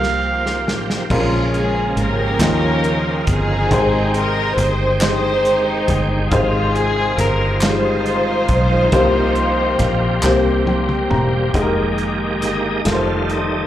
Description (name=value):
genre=slow gospel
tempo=46 BPM (dotted quarters)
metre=6/8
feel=straight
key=F minor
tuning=A4 = 440 Hz
part: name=clear trumpet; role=melody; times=0.0-0.8 s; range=F5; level=-21 LUFS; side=right 4 dB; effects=none
part: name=warm upright piano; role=accompaniment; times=0.0-13.7 s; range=Bb2 to Bb5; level=-21 LUFS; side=left 3 dB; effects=slapback echo
part: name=bright tonewheel organ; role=sustained chords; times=0.0-13.7 s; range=Db3 to G5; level=-23 LUFS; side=right 2 dB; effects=slow rotary speaker, overdrive, chorus vibrato
part: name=fingered electric bass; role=bass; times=0.0-13.7 s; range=E1 to Eb2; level=-21 LUFS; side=equal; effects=none
part: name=warm soul drum kit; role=drums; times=0.0-13.5 s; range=crash cymbal, hi-hat, kick drum, snare drum, toms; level=-23 LUFS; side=equal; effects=none
part: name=warm chamber string section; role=melody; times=1.1-10.7 s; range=Ab3 to C5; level=-19 LUFS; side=equal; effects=slapback echo
part: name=group handclap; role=percussion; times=2.4-10.6 s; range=none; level=-25 LUFS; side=left 1 dB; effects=none
room=light reverb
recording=live gig heard through the venue's PA, club reverb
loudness=-15 LUFS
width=side -12 dB against mid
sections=0.0-1.1 A section; 1.1-11.5 B section; 11.5-13.7 C section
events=drum fill 0.0-1.1, 10.2-11.5; upright piano fill 10.2-11.5; tonewheel organ solo 11.5-13.7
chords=0.0 C7sus4; 1.1 Bbm7; 2.4 Eb9; 3.7 Abmaj7; 6.3 Fm7; 8.9 C7sus4; 10.2 C7; 11.5 Fm11; 12.9 F7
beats=| 1.10 2.40 | 3.71 5.01 | 6.31 7.62 | 8.93 10.23 | 11.54 12.85